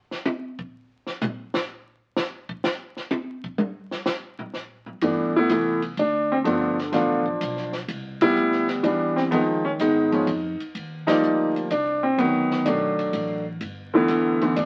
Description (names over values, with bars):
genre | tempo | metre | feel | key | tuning
jazz piano trio | 126 BPM | 3/4 | swing 69% on 8ths | unclear | A4 = 444 Hz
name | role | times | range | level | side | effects
compact cocktail drum kit | drums | 0.1-14.7 s | hi-hat, kick drum, ride cymbal, snare drum, toms | -33 LUFS | equal | none
clear baby grand piano | melody | 5.0-14.7 s | D3 to D5 | -22 LUFS | equal | none
upright bass | bass | 5.0-14.7 s | G1 to G#2 | -38 LUFS | equal | none
room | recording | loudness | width
light reverb | very old 78 rpm record, vinyl crackle | -24 LUFS | mono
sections
0.0-5.0 A section; 5.0-14.7 B section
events
drum solo 0.0-5.0; band accent 8.1, 11.0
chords
0.0 N.C.; 5.0 G69; 6.5 G9; 7.9 Cmaj7; 9.3 C#9; 10.8 Ebmaj9; 12.2 D; 13.6 G69